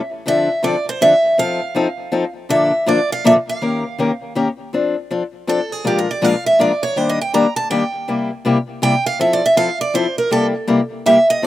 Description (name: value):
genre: jazz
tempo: 161 BPM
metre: 3/4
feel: swing 62% on 8ths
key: F major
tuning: A4 = 443 Hz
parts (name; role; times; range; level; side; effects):
- picked steel-string acoustic guitar; melody; 0.0-11.5 s; G4 to Bb5; -16 LUFS; right 2 dB; slapback echo
- picked steel-string acoustic guitar; accompaniment; 0.3-11.5 s; Bb2 to Bb4; -18 LUFS; left 3 dB; slapback echo
room: little or no reverb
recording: recorded outdoors, with no room sound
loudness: -15 LUFS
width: side -14 dB against mid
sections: 0.0-4.7 A section; 4.7-11.5 B section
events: steel-string acoustic guitar solo 4.7-11.5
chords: 0.3 Dm7; 1.4 F7; 2.5 Bbmaj7; 3.6 Eb9; 4.7 F6; 5.9 Bb7; 7.0 Ebmaj7; 8.1 C7; 9.2 Fmaj7; 10.3 C7